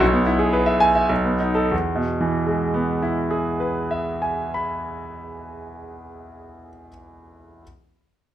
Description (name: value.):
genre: classical, virtuoso piano study.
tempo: 98 BPM.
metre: 3/4.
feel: rubato.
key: E major.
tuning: A4 = 442 Hz.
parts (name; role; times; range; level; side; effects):
bright concert grand piano; solo; 0.0-7.6 s; B1 to B5; -20 LUFS; right 1 dB; none.
room: light reverb.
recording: minimal, uncompressed stereo recording.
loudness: -19 LUFS.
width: side -12 dB against mid.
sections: 0.0-1.7 A section; 1.7-5.4 B section.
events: slowing down 0.0-1.7.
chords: 0.0 E/B; 1.1 B7; 1.7 E.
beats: | 0.01 0.53 1.10 | 1.72 2.33 2.96 | 3.57 4.18 4.80.